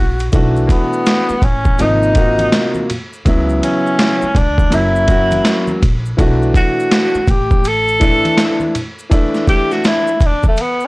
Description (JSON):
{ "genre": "hip hop, jazz-hop", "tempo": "82 BPM", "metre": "4/4", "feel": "swing 62% on 16ths", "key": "B minor", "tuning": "A4 = 440 Hz", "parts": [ { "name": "upright bass", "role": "bass", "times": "0.0-8.2 s", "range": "F#1 to C#2", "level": "-19 LUFS", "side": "equal", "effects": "transformer saturation" }, { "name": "boom bap sampler-style drum kit", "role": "drums", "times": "0.2-10.8 s", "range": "hi-hat, kick drum, ride cymbal, snare drum", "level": "-16 LUFS", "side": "equal", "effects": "none" }, { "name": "maracas and congas", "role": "percussion", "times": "0.2-10.9 s", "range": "none", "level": "-27 LUFS", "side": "equal", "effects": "none" }, { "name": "warm concert grand piano", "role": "accompaniment", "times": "0.3-10.1 s", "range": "B#2 to F#4", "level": "-17 LUFS", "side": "equal", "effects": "none" }, { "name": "breathy tenor saxophone", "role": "melody", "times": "0.7-10.9 s", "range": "A3 to A4", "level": "-16 LUFS", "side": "equal", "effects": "none" } ], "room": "little or no reverb", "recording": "dry, gritty hardware recording, transformer saturation, cassette tape", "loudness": "-12 LUFS", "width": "side -22 dB against mid", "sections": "0.3-10.9 A section", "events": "tenor saxophone solo 0.3-10.9", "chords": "0.3 Bm7; 1.8 G#7; 3.3 Dmaj13/C#; 4.7 F#7; 6.2 Bm7 (rootless)" }